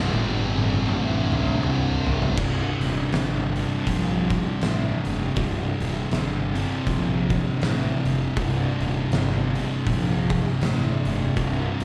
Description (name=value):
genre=stoner and doom metal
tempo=80 BPM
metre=4/4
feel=swing 58% on 8ths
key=C dorian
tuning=A4 = 440 Hz
part: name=fuzz guitar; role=riff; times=0.0-11.8 s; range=C2 to C3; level=-33 LUFS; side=equal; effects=distortion
part: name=heavy high-gain guitar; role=riff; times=0.0-2.4 s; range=C2 to Eb4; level=-34 LUFS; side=equal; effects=distortion
part: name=thick fuzz guitar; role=riff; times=0.0-11.8 s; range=C2 to C3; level=-28 LUFS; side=equal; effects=distortion
part: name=fuzz fingered electric bass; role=bass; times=0.0-11.8 s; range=C1 to C2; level=-29 LUFS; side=equal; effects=overdrive
part: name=oversized low-tuned drum kit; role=drums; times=0.1-11.8 s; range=crash cymbal, hi-hat, kick drum, snare drum, toms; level=-30 LUFS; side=equal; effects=none
room=light reverb, small room ambience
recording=live gig heard through the venue's PA, cassette tape, club reverb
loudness=-24 LUFS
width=mono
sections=0.0-2.4 A section; 2.4-11.8 B section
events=drum fill 0.0-2.4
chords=0.0 Cm; 2.4 C5